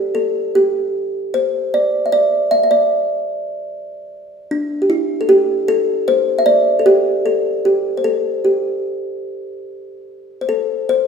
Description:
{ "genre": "chinese traditional", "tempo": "76 BPM", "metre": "4/4", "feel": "rubato", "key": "G zhi mode", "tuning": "A4 = 440 Hz", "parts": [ { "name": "kalimba", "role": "solo", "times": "0.0-11.1 s", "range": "D4 to E5", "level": "-15 LUFS", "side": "equal", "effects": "none" } ], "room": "wet recital hall reverb, RT60 1.3 s", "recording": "none", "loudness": "-14 LUFS", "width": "side -6 dB against mid", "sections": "0.0-10.1 A section", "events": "none", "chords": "none", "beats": "| 0.53 1.33 2.13 2.92 | 3.71 4.50 5.28 6.07 | 6.86 7.65 8.45 9.26 | 10.08 10.89" }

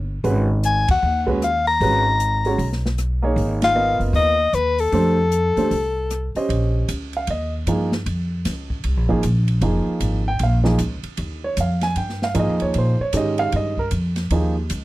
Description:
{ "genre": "modal jazz", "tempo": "154 BPM", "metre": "4/4", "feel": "swing 64% on 8ths", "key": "G# dorian, Bb dorian from 6.5 s", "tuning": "A4 = 440 Hz", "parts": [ { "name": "upright bass", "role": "bass", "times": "0.0-14.8 s", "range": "F1 to Bb2", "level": "-21 LUFS", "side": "equal", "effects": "none" }, { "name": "warm baby grand piano", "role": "accompaniment", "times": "0.2-14.5 s", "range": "Eb3 to Ab5", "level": "-22 LUFS", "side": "right 2 dB", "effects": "none" }, { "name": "open jazz drum kit", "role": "drums", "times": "0.2-14.8 s", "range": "hi-hat, kick drum, ride cymbal, rim click, snare drum", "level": "-31 LUFS", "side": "equal", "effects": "none" }, { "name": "warm soprano saxophone", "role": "melody", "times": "0.7-6.4 s", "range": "A4 to A#5", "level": "-19 LUFS", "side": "left 3 dB", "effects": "none" } ], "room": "little or no reverb", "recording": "dry, close 1970s-style studio recording", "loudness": "-18 LUFS", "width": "side -17 dB against mid", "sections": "0.0-6.5 A section; 6.5-14.8 B section", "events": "band accent 0.8, 3.6", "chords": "0.0 G#m11; 4.9 F69; 6.5 Bb7sus4", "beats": "| 0.25 0.64 1.03 1.42 | 1.81 2.20 2.59 2.98 | 3.37 3.76 4.15 4.54 | 4.93 5.32 5.71 6.10 | 6.49 6.88 7.28 7.67 | 8.06 8.45 8.84 9.23 | 9.62 10.01 10.40 10.79 | 11.18 11.57 11.96 12.36 | 12.75 13.14 13.53 13.92 | 14.31 14.70" }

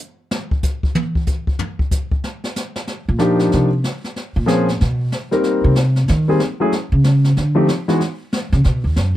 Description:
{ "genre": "jazz piano trio", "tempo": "188 BPM", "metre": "4/4", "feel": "swing 63% on 8ths", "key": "Eb major", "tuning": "A4 = 440 Hz", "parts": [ { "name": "jazz brush drum kit", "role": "drums", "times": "0.3-9.2 s", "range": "brushed snare drum, hi-hat, kick drum, snare drum, toms", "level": "-22 LUFS", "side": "equal", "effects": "none" }, { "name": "upright bass", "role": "bass", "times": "3.1-9.1 s", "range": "Eb2 to Eb3", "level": "-15 LUFS", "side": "equal", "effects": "none" }, { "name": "clear grand piano", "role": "melody", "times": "3.2-8.0 s", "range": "Fb3 to A#4", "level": "-16 LUFS", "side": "left 1 dB", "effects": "none" } ], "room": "little or no reverb", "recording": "dark, warm production", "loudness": "-16 LUFS", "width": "side -14 dB against mid", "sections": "0.0-2.9 A section; 2.9-9.2 A section", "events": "drum solo 0.0-2.9; upright bass solo 2.9-9.2", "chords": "0.0 N.C.; 2.9 Ebmaj9; 4.2 Bbm9; 4.8 Bmaj7(no3); 5.4 Abmaj9 (rootless); 6.7 N.C.; 8.0 Ebm7", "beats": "0.00 | 0.32 0.64 0.96 1.28 | 1.60 1.92 2.23 2.56 | 2.88 3.19 3.52 3.84 | 4.16 4.48 4.80 5.12 | 5.44 5.76 6.08 6.40 | 6.72 7.04 7.36 7.68 | 8.00 8.32 8.64 8.96" }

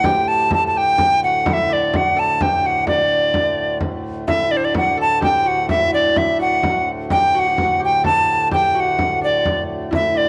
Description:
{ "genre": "medieval dance", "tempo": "85 BPM (dotted quarters)", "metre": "6/8", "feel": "straight", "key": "D major", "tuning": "A4 = 441 Hz", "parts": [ { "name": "bright alto recorder", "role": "melody", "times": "0.0-10.3 s", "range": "C5 to A5", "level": "-18 LUFS", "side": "equal", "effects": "none" }, { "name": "concert harp", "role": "second line", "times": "0.0-10.3 s", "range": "D4 to A4", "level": "-29 LUFS", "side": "equal", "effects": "none" }, { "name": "hand-pumped harmonium", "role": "drone", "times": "0.0-10.3 s", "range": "D2 to A2", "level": "-30 LUFS", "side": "equal", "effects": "none" }, { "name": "frame drum", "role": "percussion", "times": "0.0-10.1 s", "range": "none", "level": "-27 LUFS", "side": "equal", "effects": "none" } ], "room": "moderate echo chamber reverb, RT60 1.7 s, small room ambience", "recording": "none", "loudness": "-18 LUFS", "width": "mono", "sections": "0.0-4.3 A section; 4.3-10.3 A section", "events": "none", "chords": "none", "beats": "| 0.04 0.75 | 1.46 2.16 | 2.87 3.57 | 4.28 4.98 | 5.69 6.39 | 7.10 7.80 | 8.51 9.21 | 9.92" }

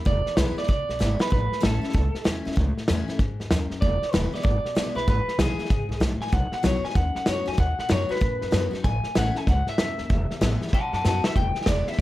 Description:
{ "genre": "rockabilly", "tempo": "191 BPM", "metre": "4/4", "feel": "swing 63% on 8ths", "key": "E major", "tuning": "A4 = 440 Hz", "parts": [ { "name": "picked steel-string acoustic guitar", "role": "accompaniment", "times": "0.0-12.0 s", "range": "E2 to F#4", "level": "-32 LUFS", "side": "left 4 dB", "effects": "none" }, { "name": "upright bass", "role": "bass", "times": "0.0-12.0 s", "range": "E1 to A2", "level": "-26 LUFS", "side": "equal", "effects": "none" }, { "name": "electric guitar through a small old amp", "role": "melody", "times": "0.1-12.0 s", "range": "G#4 to A5", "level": "-28 LUFS", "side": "equal", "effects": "tape echo" }, { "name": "vintage drum kit", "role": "drums", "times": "0.1-12.0 s", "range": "hi-hat, kick drum, snare drum", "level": "-25 LUFS", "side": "equal", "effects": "none" } ], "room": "light reverb", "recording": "none", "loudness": "-22 LUFS", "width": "side -16 dB against mid", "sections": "0.0-11.4 A section", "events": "clean electric guitar solo 0.0-11.4; drum fill 1.0-1.3, 11.0-11.4", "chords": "0.1 E; 1.3 A; 3.8 E; 6.3 B; 8.8 A; 10.1 E; 10.7 B; 11.4 E", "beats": "| 0.06 0.37 0.69 1.00 | 1.31 1.62 1.94 2.25 | 2.57 2.88 3.19 3.51 | 3.82 4.13 4.45 4.76 | 5.08 5.39 5.70 6.02 | 6.33 6.64 6.96 7.27 | 7.59 7.90 8.22 8.53 | 8.84 9.16 9.47 9.79 | 10.10 10.41 10.73 11.04 | 11.36 11.67 11.99" }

